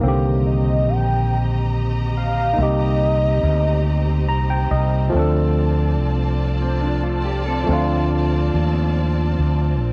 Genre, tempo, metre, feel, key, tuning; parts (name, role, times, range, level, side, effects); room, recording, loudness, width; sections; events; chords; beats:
R&B; 47 BPM (dotted quarters); 6/8; straight; C dorian; A4 = 440 Hz
barky tine electric piano; accompaniment; 0.0-9.9 s; D3 to Bb5; -26 LUFS; equal; overdrive
clear studio string section; sustained chords; 0.0-9.9 s; C4 to Bb5; -32 LUFS; equal
fretless electric bass; bass; 0.0-9.9 s; Bb1 to Eb2; -21 LUFS; equal
warm velvety synth lead; melody; 0.5-4.7 s; Eb5 to G5; -25 LUFS; equal; chorus
mellow electric guitar; second line; 6.6-8.7 s; F3 to A4; -29 LUFS; equal
little or no reverb; worn, warbling old tape, cassette tape, warbly pitch drift; -19 LUFS; mono
0.0-9.9 A section
tine electric piano fill 3.8-5.1
0.0 Cm7; 5.1 Dm7
| 0.02 1.29 | 2.57 3.85 | 5.12 6.40 | 7.68 8.96